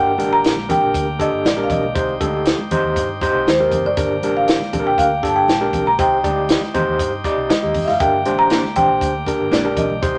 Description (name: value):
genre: uptempo 1960s-style soul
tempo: 119 BPM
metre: 4/4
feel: straight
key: G minor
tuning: A4 = 440 Hz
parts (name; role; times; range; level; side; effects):
- marimba with medium mallets; melody; 0.0-10.2 s; C5 to Bb5; -21 LUFS; equal; none
- overdriven tine electric piano; accompaniment; 0.0-10.2 s; D4 to Eb5; -22 LUFS; equal; fast tremolo
- bright tonewheel organ; sustained chords; 0.0-10.2 s; D3 to G4; -32 LUFS; equal; overdrive, stopped rotary speaker
- vintage muted fingered electric bass; bass; 0.0-10.2 s; F1 to G2; -32 LUFS; equal; none
- compact cocktail drum kit; drums; 0.2-10.1 s; hi-hat, kick drum, snare drum; -23 LUFS; equal; none
- congas; percussion; 0.2-10.2 s; none; -31 LUFS; equal; none
- electric guitar through a small old amp; stabs; 8.5-9.6 s; Bb3 to G4; -27 LUFS; equal; none
room: moderate studio reverb, RT60 0.7 s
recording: nothing above 10.4 kHz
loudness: -18 LUFS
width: mono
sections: 0.0-10.2 A section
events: none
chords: 0.0 Gm; 2.0 Cm; 4.0 Gm; 6.0 Cm; 8.0 Gm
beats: 0.44 0.95 1.45 | 1.96 2.46 2.96 3.47 | 3.97 4.48 4.98 5.49 | 5.99 6.50 7.00 7.50 | 8.01 8.51 9.02 9.52 | 10.03